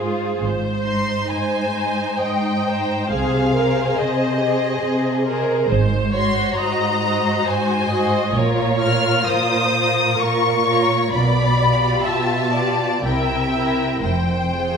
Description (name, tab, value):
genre	classical, slow romantic movement for string orchestra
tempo	57-71 BPM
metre	3/4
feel	rubato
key	unclear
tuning	A4 = 439 Hz
part	warm symphonic violin section	melody	0.0-14.8 s	C5 to F6	-22 LUFS	left 4 dB	none
part	warm symphonic violin section	second line	0.0-14.8 s	Eb4 to C5	-24 LUFS	left 1 dB	none
part	rich symphonic viola section	accompaniment	0.0-14.8 s	G4 to E5	-24 LUFS	right 2 dB	none
part	warm symphonic cello section	bass	0.0-14.8 s	F2 to C3	-22 LUFS	right 1 dB	none
part	rich symphonic double bass section	bass	0.4-14.8 s	F1 to C2	-25 LUFS	right 3 dB	none
room	wet scoring stage reverb, RT60 1.8 s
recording	minimal, uncompressed stereo recording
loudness	-17 LUFS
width	side -6 dB against mid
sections	0.0-14.8 A section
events	none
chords	0.4 Ab; 3.1 Ab/C; 5.7 Ab7; 8.3 Bbm; 11.1 G7/B; 13.0 C7; 14.0 Fm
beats	| 0.42 1.31 2.22 | 3.12 3.98 4.83 | 5.70 6.59 7.47 | 8.35 9.27 10.19 | 11.12 12.05 13.03 | 14.03